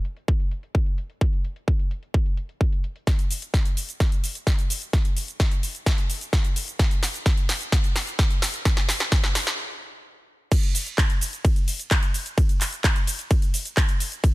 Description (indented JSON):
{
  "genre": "EDM",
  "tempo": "129 BPM",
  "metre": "4/4",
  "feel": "straight",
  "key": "none",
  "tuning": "none",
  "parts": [
    { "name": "big-room dance drum kit", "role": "drums", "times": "0.0-14.3 s", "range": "crash cymbal, handclaps, hi-hat, ride cymbal, shaker, snare drum", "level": "-27 LUFS", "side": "equal", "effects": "high-pass filter on hats, low-pass filter on hats, high-pass filter on snare, low-pass filter on snare, high-pass filter on perc, low-pass filter on perc, high-pass filter on cymbals, low-pass filter on cymbals" },
    { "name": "electronic kick drum", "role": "drums", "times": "0.3-14.3 s", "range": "none", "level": "-21 LUFS", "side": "equal", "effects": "overdrive" }
  ],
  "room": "digital ambience",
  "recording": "none",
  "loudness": "-21 LUFS",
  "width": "side -19 dB against mid",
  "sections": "0.0-3.1 A section; 3.1-10.5 B section; 10.5-14.3 C section",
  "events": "build-up 3.1-10.5; drum fill 3.1-9.6; stop 9.6-10.5; drop 10.5-14.3",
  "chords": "none",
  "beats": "0.28 0.75 | 1.21 1.68 2.14 2.61 | 3.07 3.54 4.00 4.47 | 4.93 5.40 5.87 6.33 | 6.79 7.26 7.73 8.19 | 8.66 9.12 9.59 10.05 | 10.52 10.98 11.45 11.91 | 12.38 12.84 13.31 13.77 | 14.24"
}